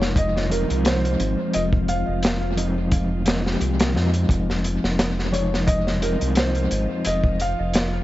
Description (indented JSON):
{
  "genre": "trip hop",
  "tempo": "87 BPM",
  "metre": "4/4",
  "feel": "swing 55% on 16ths",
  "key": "F minor",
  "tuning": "A4 = 440 Hz",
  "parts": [
    { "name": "felt-muted upright piano", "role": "melody", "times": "0.0-8.0 s", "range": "Bb4 to F5", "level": "-27 LUFS", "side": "equal", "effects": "vintage 12-bit sampler grit, tape echo" },
    { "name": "mellow electric guitar", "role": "accompaniment", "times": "0.0-7.4 s", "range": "C3 to G4", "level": "-25 LUFS", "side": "left 1 dB", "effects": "tremolo, vintage 12-bit sampler grit, tape echo" },
    { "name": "string machine, cellos", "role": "sustained chords", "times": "0.0-8.0 s", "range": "F3 to F4", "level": "-32 LUFS", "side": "equal", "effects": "ensemble chorus" },
    { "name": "round analog bass", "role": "bass", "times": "0.0-8.0 s", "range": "F1 to F2", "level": "-24 LUFS", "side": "equal", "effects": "none" },
    { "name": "crunchy breakbeat drum kit", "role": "drums", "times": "0.0-7.9 s", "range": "hi-hat, kick drum, snare drum", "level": "-24 LUFS", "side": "equal", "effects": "tape echo" }
  ],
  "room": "small room ambience",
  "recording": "echo-heavy mix, vinyl crackle, nothing above 7.8 kHz",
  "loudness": "-19 LUFS",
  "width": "side -15 dB against mid",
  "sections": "0.0-8.0 A section",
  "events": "none",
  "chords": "0.0 Fm7"
}